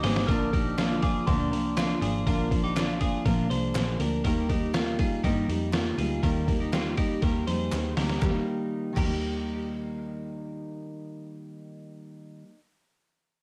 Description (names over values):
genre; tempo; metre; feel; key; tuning
jangly indie pop; 121 BPM; 4/4; straight; Eb major; A4 = 436 Hz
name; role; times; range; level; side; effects
glockenspiel with soft plastic mallets; second line; 0.0-2.5, 8.2-12.1 s; Bb5 to F6; -40 LUFS; equal; none
fingerpicked steel-string acoustic guitar; accompaniment; 0.0-12.6 s; Bb2 to Eb4; -32 LUFS; equal; none
twelve-string electric guitar; arpeggios; 0.0-9.7 s; Bb3 to C5; -36 LUFS; equal; none
vintage muted picked electric bass; bass; 0.0-12.1 s; Ab1 to G2; -35 LUFS; equal; none
trip hop sampler-style drum kit; drums; 0.0-9.1 s; crash cymbal, hi-hat, kick drum, snare drum; -32 LUFS; equal; cassette tape
group handclap; percussion; 0.8-9.1 s; none; -44 LUFS; equal; none
room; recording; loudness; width
light reverb; home recording on cassette; -27 LUFS; mono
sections
0.3-8.2 A section; 8.2-12.2 B section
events
drum fill 0.0, 7.7-8.2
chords
0.3 Bb; 4.2 Eb